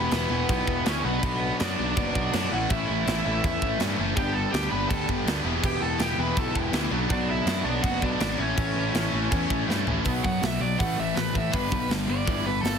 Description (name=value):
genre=punk rock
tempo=163 BPM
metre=4/4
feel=straight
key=B minor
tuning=A4 = 441 Hz
part: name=overdriven electric guitar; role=melody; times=0.0-12.8 s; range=B3 to B5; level=-30 LUFS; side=right 1 dB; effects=ping-pong delay
part: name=cranked stack guitar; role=riff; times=0.0-12.8 s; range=A2 to G4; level=-32 LUFS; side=right 15 dB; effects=overdrive
part: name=heavy high-gain guitar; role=riff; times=0.0-12.8 s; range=E2 to B3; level=-34 LUFS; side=right 2 dB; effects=distortion
part: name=overdriven electric guitar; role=riff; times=0.0-12.8 s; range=A2 to G4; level=-31 LUFS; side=left 16 dB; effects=none
part: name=fuzz picked electric bass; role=bass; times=0.0-12.8 s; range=E1 to A2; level=-30 LUFS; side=equal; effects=overdrive
part: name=tight metal drum kit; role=drums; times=0.1-12.7 s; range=crash cymbal, hi-hat, kick drum, snare drum, toms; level=-29 LUFS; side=equal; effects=none
room=little or no reverb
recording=heavily compressed radio sound, multiband compression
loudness=-23 LUFS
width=side -7 dB against mid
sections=0.0-10.1 A section; 10.1-12.8 B section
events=drum fill 9.7-10.1; overdriven electric guitar solo 10.1-12.8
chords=0.0 Em; 1.0 Bm; 2.5 A; 4.2 G; 5.4 Em; 6.9 Bm; 8.4 A; 10.1 B5; 10.8 A5; 11.5 G; 12.3 Em/G